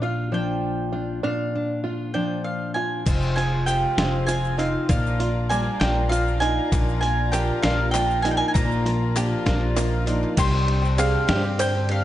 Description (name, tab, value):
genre	indie folk with a building arrangement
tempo	66 BPM (dotted quarters)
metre	6/8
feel	straight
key	unclear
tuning	A4 = 441 Hz
part	mandolin	melody	0.0-12.0 s	F5 to C6	-26 LUFS	right 1 dB	none
part	fingerpicked steel-string acoustic guitar	accompaniment	0.0-4.9 s	Bb2 to F4	-29 LUFS	left 3 dB	none
part	open-back banjo	arpeggios	0.0-12.0 s	G3 to C5	-30 LUFS	right 3 dB	none
part	upright bass	bass	0.0-12.0 s	F1 to G2	-24 LUFS	equal	none
part	picked twelve-string acoustic guitar	accompaniment	3.1-12.0 s	F2 to G4	-29 LUFS	left 3 dB	none
part	dark chamber string section	sustained chords	3.1-12.0 s	D3 to Bb5	-36 LUFS	right 1 dB	none
part	lo-fi sampler-style drum kit	drums	3.1-12.0 s	crash cymbal, hi-hat, kick drum, ride cymbal, snare drum	-26 LUFS	equal	none
part	tube shaker	percussion	3.1-11.7 s	none	-42 LUFS	right 8 dB	none
part	felt-muted upright piano	accompaniment	6.7-12.0 s	Bb1 to F5	-31 LUFS	right 3 dB	none
part	group handclap	percussion	6.7-11.7 s	none	-35 LUFS	left 4 dB	none
room	light reverb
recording	dark, warm production, nothing above 10.3 kHz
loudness	-20 LUFS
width	side -13 dB against mid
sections	0.0-3.1 A section; 3.1-10.4 B section; 10.4-12.0 C section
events	felt piano fill 9.5-10.4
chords	0.0 Bb; 3.1 Fm; 4.9 Bb; 10.4 Csus2